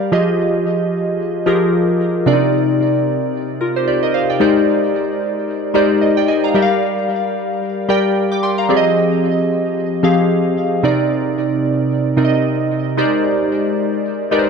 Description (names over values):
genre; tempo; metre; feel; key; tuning
amapiano; 112 BPM; 4/4; swing 58% on 16ths; C minor; A4 = 440 Hz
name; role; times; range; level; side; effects
glassy digital keys; solo; 0.0-14.5 s; C3 to D6; -14 LUFS; equal; chorus, digital delay
room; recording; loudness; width
light reverb, digital ambience; dark, warm production; -14 LUFS; side -5 dB against mid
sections
0.0-14.5 A section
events
none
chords
0.1 Fm9; 2.3 Cm7; 4.4 Abmaj9#11; 6.5 Gm7; 8.7 Fm9; 10.8 Cm7; 13.0 Abmaj9#11